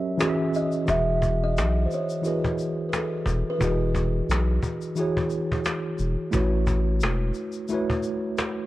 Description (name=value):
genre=lo-fi hip hop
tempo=88 BPM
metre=4/4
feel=swing 56% on 16ths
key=E major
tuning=A4 = 435 Hz
part: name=buzzing kalimba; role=melody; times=0.0-4.8 s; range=A4 to E5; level=-29 LUFS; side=right 1 dB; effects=low-pass filter, analog delay
part: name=mellow tine electric piano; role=accompaniment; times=0.0-8.7 s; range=E3 to F#5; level=-26 LUFS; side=right 1 dB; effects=medium stereo tremolo, low-pass filter
part: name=cajon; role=drums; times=0.2-8.6 s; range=none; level=-29 LUFS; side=equal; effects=vintage 12-bit sampler grit
part: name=tube shaker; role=percussion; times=0.2-8.6 s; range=none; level=-44 LUFS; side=left 7 dB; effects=none
part: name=saturated sub bass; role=bass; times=0.9-7.3 s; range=E1 to B1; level=-24 LUFS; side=left 1 dB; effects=none
room=light reverb, small room ambience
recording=cassette tape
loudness=-23 LUFS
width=side -16 dB against mid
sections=0.9-8.7 A section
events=break 0.0-0.9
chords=0.2 E6; 0.9 Emaj9; 6.3 A6